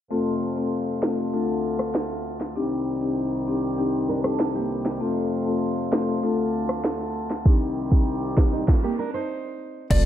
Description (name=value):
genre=dancehall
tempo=98 BPM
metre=4/4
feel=straight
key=C dorian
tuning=A4 = 443 Hz
part: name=marimba with medium mallets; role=accompaniment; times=0.1-10.1 s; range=A3 to A4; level=-26 LUFS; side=left 3 dB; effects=none
part: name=hand-pumped harmonium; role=sustained chords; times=0.1-8.7 s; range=C2 to D5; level=-31 LUFS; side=right 1 dB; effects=sidechain pumping
part: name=afro-pop drum kit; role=drums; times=1.0-10.0 s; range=crash cymbal, kick drum, rim click, snare drum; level=-22 LUFS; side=equal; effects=none
part: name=nylon-string guitar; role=arpeggios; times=4.1-9.9 s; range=G3 to C5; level=-29 LUFS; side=right 5 dB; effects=none
part: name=soft struck synth lead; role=melody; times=9.9-10.0 s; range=D5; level=-26 LUFS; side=left 2 dB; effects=chorus
part: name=sub bass with octave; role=bass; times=9.9-10.1 s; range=F1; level=-20 LUFS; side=right 1 dB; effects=none
room=light reverb, studio reverb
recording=low-pass filter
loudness=-22 LUFS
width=side -11 dB against mid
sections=0.1-9.9 A section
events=filter sweep 0.1-9.9; stop 8.7-9.9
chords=0.1 F; 1.3 Dm; 2.6 Cmadd9; 5.0 F; 6.2 Dm; 7.5 Cmadd9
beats=| 0.11 0.72 1.33 1.95 | 2.56 3.17 3.78 4.39 | 5.01 5.62 6.23 6.84 | 7.46 8.07 8.68 9.29 | 9.91